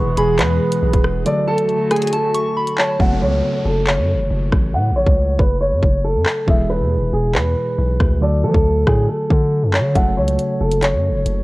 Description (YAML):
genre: hip hop, drill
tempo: 138 BPM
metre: 4/4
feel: half-time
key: F# minor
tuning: A4 = 440 Hz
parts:
  - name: dark grand piano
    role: melody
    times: 0.0-11.4 s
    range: G#4 to F#5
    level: -20 LUFS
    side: equal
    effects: low-pass filter
  - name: soft synth bell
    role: second line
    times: 0.0-3.0 s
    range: G#5 to C#6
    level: -26 LUFS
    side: equal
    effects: chorus, digital delay
  - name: tine electric piano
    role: accompaniment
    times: 0.0-11.4 s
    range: B2 to A4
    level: -23 LUFS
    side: equal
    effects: overdrive, medium stereo tremolo, low-pass filter
  - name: warbly tape-like pad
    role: sustained chords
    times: 0.0-3.0 s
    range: D3 to G#4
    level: -24 LUFS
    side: equal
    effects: chorus, built-in reverb
  - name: long sustained 808-style bass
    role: bass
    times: 0.0-11.4 s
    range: E1 to F#3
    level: -19 LUFS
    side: equal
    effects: none
  - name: drill drum kit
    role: drums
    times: 0.2-11.4 s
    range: handclaps, hi-hat, kick drum, rim click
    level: -18 LUFS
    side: equal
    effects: none
  - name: downlifter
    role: sound effects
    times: 3.0-6.5 s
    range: none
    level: -31 LUFS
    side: left 1 dB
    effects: none
room: light reverb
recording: worn, warbling old tape, cassette tape, warbly pitch drift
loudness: -15 LUFS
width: side -20 dB against mid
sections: 0.0-3.0 A section; 3.0-11.4 B section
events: kick muted 1.3-3.0; hi-hats muted 3.0-10.0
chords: 0.0 E; 1.3 D; 3.0 F#m; 6.5 E; 8.2 D; 10.0 F#m